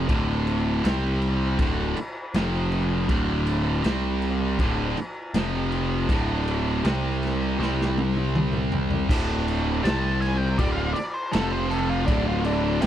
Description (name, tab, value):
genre	blues rock power trio and southern rock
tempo	80 BPM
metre	4/4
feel	straight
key	unclear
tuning	A4 = 443 Hz
part	distorted electric guitar	riff	0.0-12.9 s	D2 to C4	-26 LUFS	equal	overdrive
part	fuzz picked electric bass	bass	0.0-12.9 s	D1 to C2	-26 LUFS	equal	overdrive
part	raw garage drum kit	drums	0.1-12.9 s	crash cymbal, kick drum, snare drum, toms	-28 LUFS	equal	none
part	octave-fuzz lead guitar	melody	9.8-12.9 s	D4 to A5	-28 LUFS	equal	distortion
room	little or no reverb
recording	none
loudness	-22 LUFS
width	side -11 dB against mid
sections	0.0-9.1 A section; 9.1-12.9 B section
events	drum fill 7.6-9.1; lead electric guitar solo 9.1-12.9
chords	0.1 D5; 0.8 C5; 1.6 D5; 2.4 F5; 3.1 D5; 3.9 C5; 4.6 D5; 5.4 F5; 6.1 D5; 6.9 C5; 9.1 D5; 9.8 C5; 10.6 D5; 11.3 F5; 12.1 D5